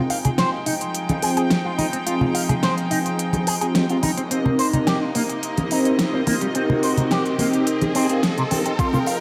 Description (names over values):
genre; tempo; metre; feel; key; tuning
nu-disco, nu disco; 107 BPM; 4/4; straight; unclear; A4 = 441 Hz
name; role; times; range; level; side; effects
mellow synth brass; accompaniment; 0.0-9.2 s; C4 to G5; -26 LUFS; equal; chorus, analog delay
rich studio string section; sustained chords; 0.0-9.2 s; C3 to G5; -30 LUFS; equal; sidechain pumping
riser; sound effects; 2.0-9.2 s; none; -35 LUFS; equal; none
electric guitar with an envelope filter; riff; 0.1-9.1 s; C3 to F5; -28 LUFS; equal; subtle chorus, low-pass filter, analog delay
pop drum kit; drums; 0.1-9.2 s; cabasa, hi-hat, snare drum; -27 LUFS; equal; none
congas, tambourine and bongos; percussion; 0.3-9.2 s; none; -28 LUFS; equal; analog delay
electronic kick drum; drums; 8.8-8.9 s; none; -25 LUFS; equal; none
room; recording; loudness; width
moderate echo chamber reverb, RT60 1.7 s, digital ambience; echo-heavy mix; -21 LUFS; mono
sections
0.0-9.2 A section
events
build-up 0.0-9.2; riser 2.0-9.2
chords
0.0 Fm9; 4.3 Cm7